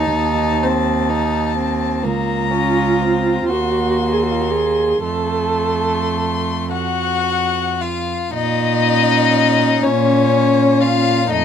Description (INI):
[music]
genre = classical, slow romantic movement for string quartet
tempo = 35-43 BPM (dotted quarters)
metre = 6/8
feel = rubato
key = Bb minor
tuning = A4 = 440 Hz
[part]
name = dark violin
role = melody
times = 0.0-11.4 s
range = Db5 to C6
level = -20 LUFS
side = left 10 dB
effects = none
[part]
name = warm violin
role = second line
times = 0.0-11.4 s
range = A3 to Gb4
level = -21 LUFS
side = left 2 dB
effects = none
[part]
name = dark viola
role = accompaniment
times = 0.0-11.4 s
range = A3 to A4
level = -20 LUFS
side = right 2 dB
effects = none
[part]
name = warm cello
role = bass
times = 0.0-11.4 s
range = Db2 to Bb2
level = -20 LUFS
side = right 5 dB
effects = none
[sound]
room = light reverb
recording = none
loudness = -15 LUFS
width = side -8 dB against mid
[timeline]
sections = 0.0-8.3 A section; 8.3-11.4 B section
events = none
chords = 0.0 Adim/Eb; 2.0 Bbm/Db; 3.5 Cdim/Eb; 5.0 F; 8.3 Bbm